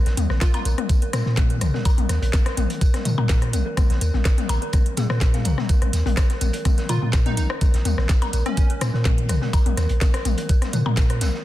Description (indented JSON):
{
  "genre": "minimal techno",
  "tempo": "125 BPM",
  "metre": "4/4",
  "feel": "straight",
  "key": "Bb minor",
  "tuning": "A4 = 440 Hz",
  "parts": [
    { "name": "dark detuned synth bell", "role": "riff", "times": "0.1-11.3 s", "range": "Ab4 to Bb5", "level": "-33 LUFS", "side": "right 4 dB", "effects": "chorus, sidechain pumping, digital delay" },
    { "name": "punchy sub bass", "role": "bass", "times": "0.1-11.3 s", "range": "Bb1 to Bb2", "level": "-22 LUFS", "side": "equal", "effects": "sidechain pumping" },
    { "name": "crunchy breakbeat drum kit", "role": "drums", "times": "0.1-11.4 s", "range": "hi-hat, snare drum, tambourine", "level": "-38 LUFS", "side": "right 1 dB", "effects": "high-pass filter on hats, studio reverb, high-pass filter on snare, high-pass filter on perc, high-pass filter on room" },
    { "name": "garage drum kit", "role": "drums", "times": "0.1-11.3 s", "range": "hi-hat, snare drum", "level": "-30 LUFS", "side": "right 1 dB", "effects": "studio reverb, soft clipping on snare" },
    { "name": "minimal click drum kit", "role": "percussion", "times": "0.2-11.3 s", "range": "percussion blips, rim click, toms", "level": "-27 LUFS", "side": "left 5 dB", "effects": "soft clipping on snare, studio reverb" },
    { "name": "plucky unison lead", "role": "melody", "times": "0.4-0.6, 6.9-8.9 s", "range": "Db4 to F4", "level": "-34 LUFS", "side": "right 4 dB", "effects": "cassette tape, ping-pong delay" },
    { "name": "electronic kick drum", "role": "drums", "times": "0.4-11.1 s", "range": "none", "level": "-18 LUFS", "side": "equal", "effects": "studio reverb" }
  ],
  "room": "little or no reverb",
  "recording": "dense, heavily limited modern master",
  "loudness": "-18 LUFS",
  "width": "side -14 dB against mid",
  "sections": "0.0-11.4 A section",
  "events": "none",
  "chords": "none",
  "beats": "0.41 0.89 1.37 | 1.85 2.33 2.81 3.29 | 3.77 4.25 4.73 5.21 | 5.69 6.17 6.65 7.13 | 7.61 8.09 8.57 9.05 | 9.53 10.01 10.49 10.97"
}